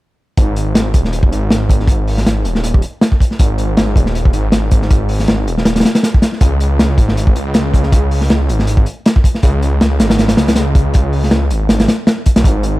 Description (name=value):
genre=drum and bass, jungle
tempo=159 BPM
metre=4/4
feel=swing 55% on 16ths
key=unclear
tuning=A4 = 440 Hz
part: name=detuned saw bass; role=bass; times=0.4-12.8 s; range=D#1 to C#2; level=-15 LUFS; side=equal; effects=tube saturation
part: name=crunchy breakbeat drum kit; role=drums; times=0.4-12.7 s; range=hi-hat, kick drum, snare drum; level=-12 LUFS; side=equal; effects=none
room=little or no reverb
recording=none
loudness=-11 LUFS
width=side -18 dB against mid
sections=0.4-12.8 A section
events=none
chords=none